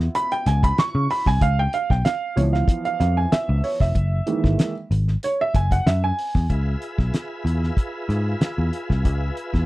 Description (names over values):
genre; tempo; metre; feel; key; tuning
funk; 94 BPM; 4/4; straight; unclear; A4 = 440 Hz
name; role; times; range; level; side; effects
dark upright piano; stabs; 0.0-6.5 s; Eb3 to Db6; -23 LUFS; right 3 dB; none
picked electric bass; bass; 0.0-9.7 s; F1 to Db3; -20 LUFS; equal; none
cloth-damped thuddy drum kit; drums; 0.0-9.7 s; hi-hat, kick drum, snare drum; -21 LUFS; equal; none
tonewheel organ; sustained chords; 6.5-9.7 s; F4 to E5; -31 LUFS; equal; chorus vibrato, lush chorus
room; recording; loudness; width
little or no reverb; dry, close 1970s-style studio recording; -19 LUFS; side -18 dB against mid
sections
0.0-6.5 A section; 6.5-9.7 B section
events
upright piano solo 0.0-6.5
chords
0.0 Db7#9; 4.0 Gb13; 6.5 Db7#9